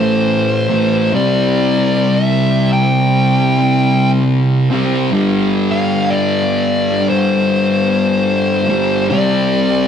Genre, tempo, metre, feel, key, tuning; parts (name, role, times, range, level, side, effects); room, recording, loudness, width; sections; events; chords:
metal; 60 BPM; 4/4; swing 59% on 8ths; A4 = 441 Hz
fuzz lead guitar; melody; 0.0-9.9 s; C5 to G5; -17 LUFS; left 1 dB; distortion
thick fuzz guitar; riff; 0.0-9.9 s; G2 to C4; -13 LUFS; equal; distortion
moderate studio reverb, RT60 0.5 s; rough rehearsal-room recording, tube saturation; -12 LUFS; side -8 dB against mid
0.0-9.9 A section
0.0 Am; 1.1 C5; 5.1 G5; 9.1 C5